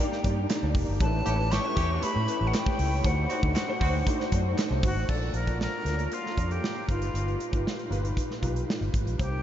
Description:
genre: polished 1980s jazz-funk pop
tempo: 117 BPM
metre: 4/4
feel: straight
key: unclear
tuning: A4 = 440 Hz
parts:
  - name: breathy bright jazz flute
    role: melody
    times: 0.0-9.4 s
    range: F4 to C#6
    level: -33 LUFS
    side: left 1 dB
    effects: tape echo
  - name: warm concert grand piano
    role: accompaniment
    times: 0.0-9.4 s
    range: A#2 to D5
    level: -32 LUFS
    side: left 1 dB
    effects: ensemble chorus
  - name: modern studio drum kit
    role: drums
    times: 0.1-9.3 s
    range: crash cymbal, hi-hat, kick drum, snare drum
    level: -30 LUFS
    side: equal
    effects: none
  - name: vintage muted fingered electric bass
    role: bass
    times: 0.2-9.4 s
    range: F1 to A2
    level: -28 LUFS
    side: equal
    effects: none
  - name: group handclap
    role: percussion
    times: 0.5-4.7 s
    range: none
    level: barely audible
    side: none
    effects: none
  - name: warm horn section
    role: second line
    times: 1.3-4.0 s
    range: C4 to G4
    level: -40 LUFS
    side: right 2 dB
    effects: none
room: moderate huge ambient reverb, RT60 8.2 s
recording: dreamy mix soaked in reverb, nothing above 7.6 kHz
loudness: -25 LUFS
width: side -11 dB against mid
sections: 0.0-5.1 A section; 5.1-9.4 B section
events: none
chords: 0.0 Ebmaj7; 1.0 A9; 3.0 D7b9; 5.1 Bbmaj7; 6.9 G7alt

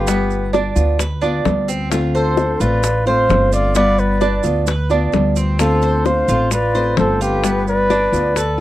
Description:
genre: latin, Cuban son and guajira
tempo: 130 BPM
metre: 4/4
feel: straight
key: unclear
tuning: A4 = 440 Hz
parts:
  - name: trumpet with bucket mute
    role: melody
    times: 0.0-8.6 s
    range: G4 to D5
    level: -18 LUFS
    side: equal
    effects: none
  - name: breathy bright concert flute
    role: second line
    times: 0.0-8.6 s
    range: B4 to F5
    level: -25 LUFS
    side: left 7 dB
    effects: none
  - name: nylon-string guitar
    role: accompaniment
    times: 0.0-8.6 s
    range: D3 to F4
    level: -21 LUFS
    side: left 3 dB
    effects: none
  - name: Cuban tres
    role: arpeggios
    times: 0.0-8.6 s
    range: B3 to C5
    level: -22 LUFS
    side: right 5 dB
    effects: none
  - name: upright bass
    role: bass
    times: 0.0-8.6 s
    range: G1 to D2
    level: -20 LUFS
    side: equal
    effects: none
  - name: bongos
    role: percussion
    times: 0.1-8.6 s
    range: none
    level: -22 LUFS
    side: left 7 dB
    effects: none
  - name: maracas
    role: percussion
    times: 0.1-8.6 s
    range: none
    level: -30 LUFS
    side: right 16 dB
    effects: none
room: light reverb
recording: dry, close 1970s-style studio recording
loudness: -14 LUFS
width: side -14 dB against mid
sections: 0.0-8.6 A section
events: none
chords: 0.1 G7; 1.9 Dm7; 3.8 G7; 5.6 Dm7; 7.4 G7

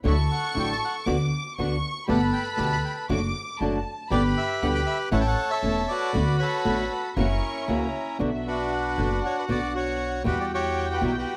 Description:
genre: tango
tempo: 118 BPM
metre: 4/4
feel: rubato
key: D major, B minor from 8.2 s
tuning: A4 = 438 Hz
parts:
  - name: dark studio violin section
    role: second line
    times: 0.0-11.4 s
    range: E5 to D6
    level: -36 LUFS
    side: equal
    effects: none
  - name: flamenco guitar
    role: accompaniment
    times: 0.0-11.1 s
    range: B2 to G4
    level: -31 LUFS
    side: equal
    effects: none
  - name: bandoneon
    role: melody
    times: 0.1-11.4 s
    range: C#4 to B5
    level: -29 LUFS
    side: equal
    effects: none
  - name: dark studio string section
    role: stabs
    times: 0.1-11.2 s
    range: G3 to G4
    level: -37 LUFS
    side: equal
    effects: none
  - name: upright bass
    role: bass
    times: 0.1-11.2 s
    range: E1 to E2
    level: -30 LUFS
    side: equal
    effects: none
room: light reverb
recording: close, detailed microphones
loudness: -26 LUFS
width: mono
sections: 0.0-8.2 A section; 8.2-11.4 B section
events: none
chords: 0.1 Dadd9; 1.1 Bm/D; 2.1 Gadd9; 3.1 D/F#; 4.1 G; 5.1 A; 6.1 D6; 7.2 F#7; 8.2 Bm; 10.3 Emadd9

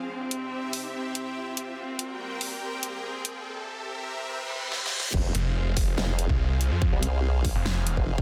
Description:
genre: heavy wobble dubstep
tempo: 143 BPM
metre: 4/4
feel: half-time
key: F harmonic minor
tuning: A4 = 439 Hz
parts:
  - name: dark cello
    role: melody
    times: 0.0-3.4 s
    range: C4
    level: -38 LUFS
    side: equal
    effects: low-pass filter, tape echo
  - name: supersaw pad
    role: sustained chords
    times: 0.0-8.2 s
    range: C3 to G5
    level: -39 LUFS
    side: equal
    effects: sidechain pumping
  - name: riser, reverse cymbal and impact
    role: sound effects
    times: 0.2-6.8 s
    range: none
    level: -39 LUFS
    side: equal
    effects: none
  - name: dubstep drum kit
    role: drums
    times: 0.3-8.0 s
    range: crash cymbal, hi-hat, snare drum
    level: -34 LUFS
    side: equal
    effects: high-pass filter on hats, high-pass filter on snare, high-pass filter on cymbals, high-pass filter on room
  - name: formant-sweep wobble bass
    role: bass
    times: 5.1-8.2 s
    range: F1 to C2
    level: -28 LUFS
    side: equal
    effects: chorus, overdrive
  - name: electronic kick drum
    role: drums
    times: 5.1-8.2 s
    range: none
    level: -29 LUFS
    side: equal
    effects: none
  - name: snarling distorted saw bass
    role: bass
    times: 5.3-8.0 s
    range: F1 to F2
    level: -28 LUFS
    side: equal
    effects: distortion, overdrive
room: light reverb, digital ambience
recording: dense, heavily limited modern master, high-pass filter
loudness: -28 LUFS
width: mono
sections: 0.0-5.1 A section; 5.1-8.2 B section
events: build-up 0.0-5.1; riser 0.2-5.1; filter sweep on cello 0.0-5.1; filter sweep 0.0-5.1; reverse cymbal 4.3-5.1; drum fill 4.7-5.1; drop 5.1-8.2; impact 5.1-6.8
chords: 0.1 C; 1.8 Gmadd11; 3.5 C; 5.1 Fm

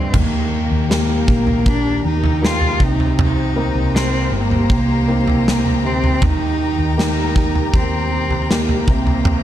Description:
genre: pop ballad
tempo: 79 BPM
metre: 4/4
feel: straight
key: Eb major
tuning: A4 = 440 Hz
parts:
  - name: rich cello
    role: melody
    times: 0.0-9.4 s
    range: Bb3 to F4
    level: -20 LUFS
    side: right 1 dB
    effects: tape echo
  - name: warm concert grand piano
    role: accompaniment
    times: 0.0-9.4 s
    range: G2 to G4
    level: -24 LUFS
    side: left 2 dB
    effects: none
  - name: rich studio string section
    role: sustained chords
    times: 0.1-9.4 s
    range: G4 to Bb5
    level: -27 LUFS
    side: left 2 dB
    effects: none
  - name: woody fretless electric bass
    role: bass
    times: 0.1-9.4 s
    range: G1 to Eb2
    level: -21 LUFS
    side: equal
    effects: lush chorus
  - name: huge arena drum kit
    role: drums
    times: 0.1-9.4 s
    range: crash cymbal, kick drum, snare drum, toms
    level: -19 LUFS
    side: equal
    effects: none
room: small room ambience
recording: dark, warm production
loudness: -14 LUFS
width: side -12 dB against mid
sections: 0.1-9.4 A section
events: none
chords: 0.1 Eb; 2.8 Cm7; 6.2 Eb; 8.9 C7(no3)

